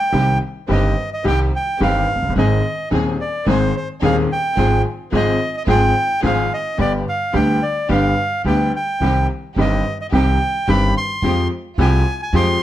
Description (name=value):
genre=tango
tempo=108 BPM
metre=4/4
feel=rubato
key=C harmonic minor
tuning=A4 = 444 Hz
part: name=bandoneon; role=melody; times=0.0-12.6 s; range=C5 to C6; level=-21 LUFS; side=right 1 dB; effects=none
part: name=bright baby grand piano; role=accompaniment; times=0.1-12.6 s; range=Eb1 to Ab4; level=-20 LUFS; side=left 2 dB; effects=none
part: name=warm symphonic string section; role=stabs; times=0.1-12.6 s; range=Ab3 to Ab4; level=-27 LUFS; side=right 2 dB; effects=none
part: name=upright bass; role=bass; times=0.1-12.6 s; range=F1 to F2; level=-20 LUFS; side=right 1 dB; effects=none
room=light reverb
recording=close, detailed microphones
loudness=-15 LUFS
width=side -13 dB against mid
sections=0.1-12.6 A section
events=none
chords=0.1 Cm; 2.4 Ab; 4.6 Fm/Ab; 6.8 G; 9.0 Cm; 11.2 Fmadd9